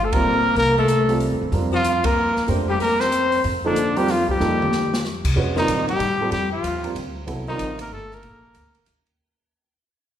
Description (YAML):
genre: modal jazz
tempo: 188 BPM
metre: 3/4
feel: swing 63% on 8ths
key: unclear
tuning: A4 = 437 Hz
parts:
  - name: clear trumpet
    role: melody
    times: 0.0-8.9 s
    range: D4 to C5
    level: -22 LUFS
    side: equal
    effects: none
  - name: clear tenor saxophone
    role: second line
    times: 0.0-8.9 s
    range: D3 to C4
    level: -25 LUFS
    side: left 3 dB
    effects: none
  - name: upright bass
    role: bass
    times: 0.0-9.2 s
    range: G1 to C3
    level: -26 LUFS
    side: equal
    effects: none
  - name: dark baby grand piano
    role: accompaniment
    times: 0.1-7.8 s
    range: F3 to C5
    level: -26 LUFS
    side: right 3 dB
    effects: none
  - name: open jazz drum kit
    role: drums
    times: 0.1-9.1 s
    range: crash cymbal, hi-hat, kick drum, ride cymbal, snare drum, toms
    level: -28 LUFS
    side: equal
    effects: none
room: wet recital hall reverb, RT60 1.7 s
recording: recorded in a church or concert hall, lossy compression artefacts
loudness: -18 LUFS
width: side -10 dB against mid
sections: 0.0-5.4 A section; 5.4-9.2 B section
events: band accent 0.1, 2.0; drum fill 4.4-5.0; fade-out 5.4-9.2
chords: 0.0 C7sus4; 1.5 F13sus4